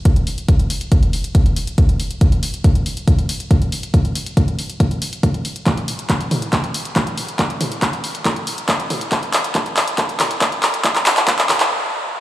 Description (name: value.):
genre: techno.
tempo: 139 BPM.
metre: 4/4.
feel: straight.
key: none.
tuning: none.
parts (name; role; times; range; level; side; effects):
electronic kick drum; drums; 0.1-11.4 s; none; -16 LUFS; equal; none.
punchy analog drum machine; drums; 0.1-11.7 s; handclaps, hi-hat, toms; -19 LUFS; equal; sidechain pumping on hats, sidechain pumping on toms.
room: moderate huge ambient reverb, RT60 6.3 s.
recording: played on a big sound system in a bare room, large studio reverb, high-pass filter.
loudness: -16 LUFS.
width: side -14 dB against mid.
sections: 0.0-12.2 A section.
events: build-up 0.0-12.2; filter sweep 0.0-12.2; drum fill 5.7-11.7; stop 11.7-12.2.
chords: none.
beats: 0.05 | 0.48 0.92 1.35 1.78 | 2.21 2.64 3.08 3.51 | 3.94 4.37 4.80 5.23 | 5.67 6.10 6.53 6.96 | 7.39 7.82 8.26 8.69 | 9.12 9.55 9.98 10.41 | 10.85 11.28.